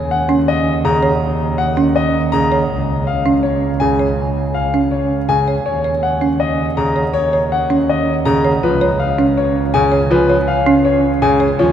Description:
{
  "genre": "classical, minimalist pattern music",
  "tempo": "162 BPM",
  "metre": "4/4",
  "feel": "straight",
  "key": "Eb minor",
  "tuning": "A4 = 441 Hz",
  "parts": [
    { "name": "warm double bass", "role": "bass", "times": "0.0-11.7 s", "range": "Db2 to Eb2", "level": "-20 LUFS", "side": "right 2 dB", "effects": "none" },
    { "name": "warm concert grand piano", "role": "melody", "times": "0.1-11.7 s", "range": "Cb5 to Bb5", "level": "-18 LUFS", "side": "left 4 dB", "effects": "none" },
    { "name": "folk marimba with medium mallets", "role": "arpeggios", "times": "0.3-11.6 s", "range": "Db4 to Db5", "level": "-18 LUFS", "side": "right 3 dB", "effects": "none" },
    { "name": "clear baby grand piano", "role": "accompaniment", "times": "0.8-11.7 s", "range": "Db3 to F3", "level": "-21 LUFS", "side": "equal", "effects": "none" }
  ],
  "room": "wet cathedral reverb, RT60 5.3 s",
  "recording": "none",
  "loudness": "-13 LUFS",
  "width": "side -9 dB against mid",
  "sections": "0.0-11.7 A section",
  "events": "none",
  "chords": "0.0 Eb7(no3); 2.7 N.C.; 5.7 Eb7(no3); 8.6 Db"
}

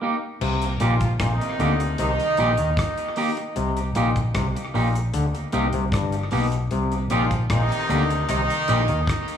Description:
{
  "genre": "roots reggae",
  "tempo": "76 BPM",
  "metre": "4/4",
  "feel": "straight",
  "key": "C minor",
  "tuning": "A4 = 439 Hz",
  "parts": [
    { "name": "electric guitar at the edge of break-up", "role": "accompaniment", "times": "0.0-8.8 s", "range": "Bb3 to G4", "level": "-27 LUFS", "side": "right 2 dB", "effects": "tape echo" },
    { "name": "overdriven clav", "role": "riff", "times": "0.4-9.0 s", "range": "G2 to Eb3", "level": "-28 LUFS", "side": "left 6 dB", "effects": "none" },
    { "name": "vintage muted fingered electric bass", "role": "bass", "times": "0.4-9.1 s", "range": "G1 to Eb2", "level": "-24 LUFS", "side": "equal", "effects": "none" },
    { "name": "damped 70s drum kit", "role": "drums", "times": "0.4-9.4 s", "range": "crash cymbal, hi-hat, kick drum, rim click", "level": "-29 LUFS", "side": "left 1 dB", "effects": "tape echo" },
    { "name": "mellow horn section", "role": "second line", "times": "0.8-9.4 s", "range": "C3 to F4", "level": "-25 LUFS", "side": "right 1 dB", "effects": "tape echo" }
  ],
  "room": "light reverb",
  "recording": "echo-heavy mix, studio reverb",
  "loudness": "-20 LUFS",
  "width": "side -8 dB against mid",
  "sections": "0.4-9.4 A section",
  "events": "break 0.0-0.4",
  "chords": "0.4 Cm7"
}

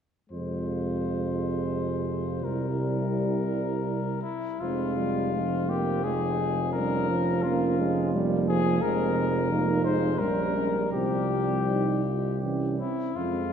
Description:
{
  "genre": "classical, hymn-like piece for brass band",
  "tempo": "74-90 BPM",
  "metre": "3/4",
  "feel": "rubato",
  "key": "F minor",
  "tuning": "A4 = 440 Hz",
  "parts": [
    { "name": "warm cornet", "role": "melody", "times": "0.3-13.5 s", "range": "E4 to C5", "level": "-31 LUFS", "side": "left 6 dB", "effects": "none" },
    { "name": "mellow French horn section", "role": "second line", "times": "0.3-13.5 s", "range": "Bb3 to F4", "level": "-32 LUFS", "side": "right 6 dB", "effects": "none" },
    { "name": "warm euphonium", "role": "accompaniment", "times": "0.3-13.5 s", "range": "F3 to Ab3", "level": "-32 LUFS", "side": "equal", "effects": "none" },
    { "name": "warm trombone", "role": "accompaniment", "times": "0.3-13.5 s", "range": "C3 to Bb3", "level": "-32 LUFS", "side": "right 3 dB", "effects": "none" },
    { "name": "warm tuba", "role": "bass", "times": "0.3-13.5 s", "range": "F1 to F2", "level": "-30 LUFS", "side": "equal", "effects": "none" }
  ],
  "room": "wet church reverb, RT60 2.7 s",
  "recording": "recorded in a church or concert hall",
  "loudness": "-24 LUFS",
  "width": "side -8 dB against mid",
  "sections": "0.3-4.6 A section; 4.6-13.5 B section",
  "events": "none",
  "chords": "0.3 Fm; 2.4 C7; 4.6 Fm; 10.2 Gdim/Bb; 10.9 Csus4; 12.4 C"
}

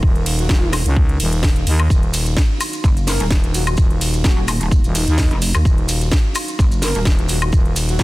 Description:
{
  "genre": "bass house",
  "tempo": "128 BPM",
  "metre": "4/4",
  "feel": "swing 54% on 16ths",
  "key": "Eb minor",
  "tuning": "A4 = 440 Hz",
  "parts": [
    { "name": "dark analog pad", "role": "sustained chords", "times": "0.0-8.0 s", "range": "Eb4 to F5", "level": "-31 LUFS", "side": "equal", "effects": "lush chorus, sidechain pumping" },
    { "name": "growling FM bass", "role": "bass", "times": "0.0-8.0 s", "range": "Eb1 to Eb2", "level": "-18 LUFS", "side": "equal", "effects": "tube saturation, sidechain pumping" },
    { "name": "electronic kick drum", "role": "drums", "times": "0.0-8.0 s", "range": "none", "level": "-15 LUFS", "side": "equal", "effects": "none" },
    { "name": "house drum kit", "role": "drums", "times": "0.2-8.0 s", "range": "hi-hat, ride cymbal, snare drum, woodblock", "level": "-23 LUFS", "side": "equal", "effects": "overdrive" },
    { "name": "breathy flute-like synth lead", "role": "melody", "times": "0.4-8.0 s", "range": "Eb4 to Bb4", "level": "-28 LUFS", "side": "equal", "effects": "wide subtle chorus, dub echo" },
    { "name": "maracas", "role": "percussion", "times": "1.9-8.0 s", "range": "none", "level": "-29 LUFS", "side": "right 1 dB", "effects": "none" },
    { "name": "pulsing pluck wobble bass", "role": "bass", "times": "2.8-8.0 s", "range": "Eb1 to Eb2", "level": "-19 LUFS", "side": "equal", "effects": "chorus, overdrive, sidechain pumping" }
  ],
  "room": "little or no reverb",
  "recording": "dense, heavily limited modern master",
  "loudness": "-14 LUFS",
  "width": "side -19 dB against mid",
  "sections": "0.0-8.0 A section",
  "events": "none",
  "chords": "0.0 Ebmadd9"
}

